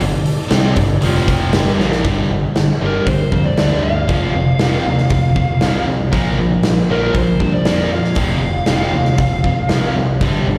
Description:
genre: hard rock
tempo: 118 BPM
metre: 4/4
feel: straight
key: unclear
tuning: A4 = 440 Hz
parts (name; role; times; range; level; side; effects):
- overdriven tonewheel organ; sustained chords; 0.0-2.0 s; F3 to A4; -32 LUFS; equal; none
- high-gain distorted guitar; riff; 0.0-10.6 s; F2 to C4; -26 LUFS; equal; distortion, slapback echo
- overdriven electric guitar; riff; 0.0-10.6 s; F2 to C4; -22 LUFS; equal; none
- picked electric bass; bass; 0.0-10.6 s; F1 to G2; -22 LUFS; equal; none
- huge arena drum kit; drums; 0.0-10.3 s; hi-hat, kick drum, snare drum; -21 LUFS; equal; none
- biting lead guitar; melody; 2.9-9.9 s; Bb4 to F5; -24 LUFS; equal; overdrive, slapback echo, analog delay
room: light reverb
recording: live gig heard through the venue's PA, recital hall reverb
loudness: -16 LUFS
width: mono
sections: 0.0-2.0 A section; 2.0-10.6 B section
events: drum fill 1.8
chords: 0.0 G5; 1.0 F5; 1.5 Gm; 2.0 G5; 4.1 F5; 6.1 Bb5; 8.2 F5

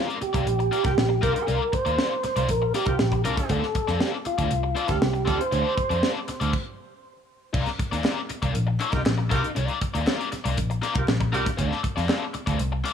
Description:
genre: funk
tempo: 119 BPM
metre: 4/4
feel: straight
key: C dorian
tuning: A4 = 436 Hz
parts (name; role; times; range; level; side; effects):
- tonewheel organ; melody; 0.0-6.1 s; F4 to C5; -26 LUFS; right 2 dB; overdrive, slow rotary speaker, analog delay
- crunchy overdriven guitar; accompaniment; 0.0-12.9 s; C4 to D5; -30 LUFS; left 6 dB; wah
- crisp fusion drum kit; drums; 0.1-12.9 s; crash cymbal, hi-hat, kick drum, snare drum; -27 LUFS; equal; none
- vintage muted picked electric bass; bass; 0.2-12.8 s; Bb1 to F2; -26 LUFS; equal; none
- warm horn section; second line; 0.8-5.4, 8.9-11.5 s; D4 to Bb4; -32 LUFS; right 2 dB; none
- group handclap; percussion; 8.0-12.9 s; none; -40 LUFS; left 2 dB; none
room: light reverb, small room ambience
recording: none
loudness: -22 LUFS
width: side -8 dB against mid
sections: 0.0-7.5 A section; 7.5-12.9 B section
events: stop 6.5-7.5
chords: 0.0 Cm11; 3.5 Dm7; 7.5 Cm11; 11.6 Dm7

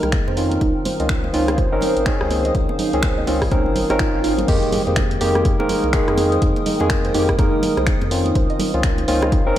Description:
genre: deep house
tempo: 124 BPM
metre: 4/4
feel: swing 60% on 16ths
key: F minor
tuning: A4 = 440 Hz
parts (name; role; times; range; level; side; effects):
- warbly tape-like pad; sustained chords; 0.0-9.6 s; Bb4 to F6; -28 LUFS; right 1 dB; chorus, built-in reverb, phaser, sidechain pumping
- barky tine electric piano; stabs; 0.0-9.6 s; Eb3 to Bb4; -20 LUFS; equal; sidechain pumping, digital delay
- round analog bass; bass; 0.0-9.5 s; F1 to F2; -24 LUFS; left 1 dB; sidechain pumping
- punchy analog drum machine; drums; 0.0-9.6 s; crash cymbal, finger snaps, hi-hat, rim click; -27 LUFS; equal; none
- congas; percussion; 0.0-9.6 s; none; -29 LUFS; right 2 dB; none
- warbly dusty pluck; arpeggios; 0.1-9.6 s; Eb4 to Eb5; -26 LUFS; right 4 dB; analog chorus, sidechain pumping, digital delay
- electronic kick drum; drums; 0.1-9.4 s; none; -21 LUFS; left 1 dB; none
- swell and impact; sound effects; 3.7-6.4 s; none; -30 LUFS; right 3 dB; none
room: digital ambience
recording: none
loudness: -16 LUFS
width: side -12 dB against mid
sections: 0.0-4.5 A section; 4.5-9.6 B section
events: swell 3.7-4.5; drop 4.5-9.6; impact 4.5-6.4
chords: 0.0 Fm11; 0.6 Dbmaj9; 4.5 Fm11; 8.4 Dbmaj9

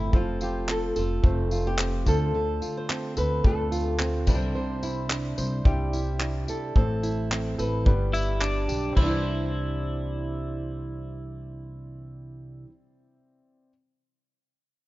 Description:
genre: acoustic pop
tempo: 109 BPM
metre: 4/4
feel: straight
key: C major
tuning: A4 = 440 Hz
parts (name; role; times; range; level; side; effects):
- flamenco guitar; melody; 0.0-12.6 s; D4 to C5; -33 LUFS; left 2 dB; none
- clear upright piano; accompaniment; 0.0-13.7 s; G3 to D5; -40 LUFS; left 3 dB; none
- fingerpicked plugged-in steel-string acoustic guitar; accompaniment; 0.0-12.7 s; A2 to C5; -31 LUFS; right 3 dB; none
- upright bass; bass; 0.0-12.6 s; F1 to D2; -29 LUFS; equal; none
- unplugged drum kit; drums; 0.1-9.1 s; crash cymbal, handclaps, kick drum, tambourine; -24 LUFS; equal; none
- twelve-string electric guitar; second line; 8.1-12.6 s; D4 to E4; -33 LUFS; left 2 dB; none
room: small room ambience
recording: rough home demo mix, nothing above 7.5 kHz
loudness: -24 LUFS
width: side -18 dB against mid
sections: 0.0-9.0 A section; 9.0-11.2 B section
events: none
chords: 0.1 F; 2.1 Dm7; 4.3 Cadd9; 6.8 Am; 7.9 G; 9.0 Cadd9

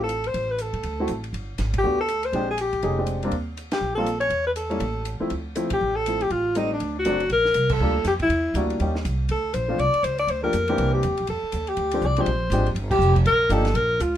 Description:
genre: jazz, small-group swing and bop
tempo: 242 BPM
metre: 4/4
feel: swing 60% on 8ths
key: D minor, G minor from 7.3 s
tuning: A4 = 439 Hz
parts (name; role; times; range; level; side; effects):
- breathy alto saxophone; melody; 0.0-14.2 s; D4 to D5; -23 LUFS; left 1 dB; none
- warm baby grand piano; accompaniment; 0.0-13.6 s; E3 to A4; -27 LUFS; equal; none
- upright bass; bass; 0.0-14.2 s; F1 to A2; -26 LUFS; right 1 dB; none
- compact cocktail drum kit; drums; 0.1-14.2 s; crash cymbal, hi-hat, kick drum, ride cymbal, snare drum; -36 LUFS; right 1 dB; none
room: light reverb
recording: minimal, uncompressed stereo recording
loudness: -21 LUFS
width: side -11 dB against mid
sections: 0.0-7.3 A section; 7.3-14.2 B section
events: band accent 1.7, 3.7, 5.7, 7.7, 12.9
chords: 0.3 Amadd9; 0.8 D7; 1.3 Gmaj7; 2.3 Bb13; 3.3 Eb; 4.3 Em; 4.8 A5; 5.3 Dm9; 6.3 Am7b5; 6.8 D7; 7.3 Gm7; 8.3 Em7b5; 8.8 Eb7; 9.3 Dm7; 10.3 Gm7; 10.8 C7; 11.3 F69; 12.3 Bb13; 13.3 Ebmaj9

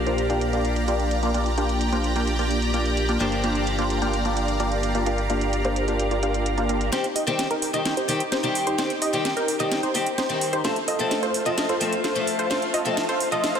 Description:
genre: EDM, festival progressive house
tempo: 129 BPM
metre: 4/4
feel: straight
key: unclear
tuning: A4 = 441 Hz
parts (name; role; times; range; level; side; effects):
- picked acoustic archtop guitar; accompaniment; 0.0-13.5 s; G2 to A4; -29 LUFS; left 3 dB; digital delay
- supersaw pad; sustained chords; 0.0-13.6 s; A3 to Bb5; -30 LUFS; right 1 dB; phaser, low-pass filter
- supersaw stab; riff; 0.0-13.6 s; Bb3 to G5; -25 LUFS; equal; phaser, low-pass filter, digital delay
- fat analog bass; bass; 0.0-6.9 s; G1 to Bb1; -27 LUFS; equal; none
- house drum kit; drums; 0.1-13.6 s; hi-hat, snare drum; -29 LUFS; right 1 dB; low-pass filter on hats, low-pass filter on snare
- plucky unison lead; arpeggios; 6.9-13.6 s; Bb4 to Eb5; -29 LUFS; equal; digital delay
room: moderate lush hall reverb, RT60 1.9 s, digital ambience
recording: dense, heavily limited modern master, high-pass filter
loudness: -21 LUFS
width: side -7 dB against mid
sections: 0.0-6.9 A section; 6.9-13.6 B section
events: build-up 6.9-13.6; drum fill 6.9-13.6; filter sweep on supersaw synth 6.9-13.6; filter sweep on digital synth lead 6.9-13.6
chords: 0.0 Bb6; 3.2 Gm7; 6.9 Cm; 10.6 F

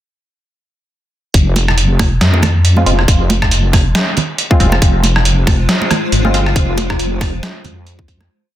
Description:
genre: deep dubstep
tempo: 138 BPM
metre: 4/4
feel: swing 57% on 16ths, half-time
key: F minor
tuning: A4 = 441 Hz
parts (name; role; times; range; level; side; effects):
- wobble bass; bass; 1.3-8.3 s; F1 to F2; -13 LUFS; equal; chorus
- electronic kick drum; drums; 1.3-8.2 s; none; -13 LUFS; equal; overdrive
- trip hop sampler-style drum kit; drums; 1.3-8.3 s; hi-hat, rim click, snare drum; -17 LUFS; equal; overdrive
- congas; percussion; 1.6-8.3 s; none; -21 LUFS; right 3 dB; dub echo
- filtered dub chord stab; stabs; 2.8-6.5 s; Ab3 to F4; -20 LUFS; equal; chorus, dub echo
- granular cloud pad; sustained chords; 5.3-8.3 s; Ab3 to C5; -22 LUFS; left 2 dB; built-in reverb
room: light reverb, digital ambience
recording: dense, heavily limited modern master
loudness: -11 LUFS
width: side -13 dB against mid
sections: 1.3-8.3 drop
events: drop 1.3-8.3; fade-out 6.0-8.3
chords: 1.3 Fm

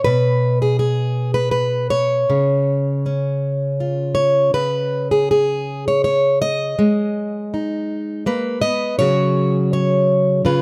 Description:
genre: folk, solo fingerstyle acoustic guitar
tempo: 82 BPM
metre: 3/4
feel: rubato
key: unclear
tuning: A4 = 440 Hz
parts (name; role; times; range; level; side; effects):
- fingerpicked plugged-in steel-string acoustic guitar; solo; 0.0-10.6 s; B2 to D#5; -18 LUFS; equal; none
room: light reverb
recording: close, detailed microphones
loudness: -19 LUFS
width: mono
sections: 0.0-10.6 A section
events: none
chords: 0.1 N.C.; 2.3 C#; 6.8 G#m; 9.0 C#sus4

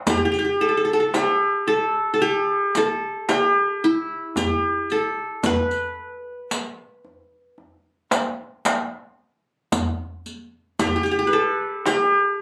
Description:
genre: Arabic maqam ensemble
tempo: 112 BPM (eighths)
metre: 10/8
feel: straight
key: unclear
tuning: A4 = 438 Hz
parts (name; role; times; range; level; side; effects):
- qanun; melody; 0.1-12.4 s; E4 to B4; -22 LUFS; equal; none
- darbuka; percussion; 0.1-12.1 s; none; -28 LUFS; equal; none
- riq; percussion; 0.1-12.1 s; none; -28 LUFS; equal; none
room: light reverb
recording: recorded on a phone in the room, club reverb, compression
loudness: -22 LUFS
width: mono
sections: 0.1-12.4 A section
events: none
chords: none

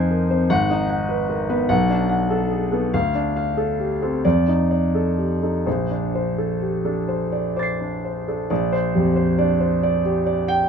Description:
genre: classical, impressionist solo piano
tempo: 41-51 BPM (dotted quarters)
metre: 6/8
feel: rubato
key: Bb major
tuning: A4 = 436 Hz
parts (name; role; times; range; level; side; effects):
- warm concert grand piano; solo; 0.0-10.7 s; Ab1 to C7; -18 LUFS; equal; none
room: light reverb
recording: minimal, uncompressed stereo recording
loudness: -19 LUFS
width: side -6 dB against mid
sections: 0.0-8.5 A section; 8.5-10.7 A section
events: none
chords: 0.5 Abm7; 1.7 Bm7; 2.9 Dm7; 4.2 F13; 5.7 Bbmaj9; 8.5 Bb69

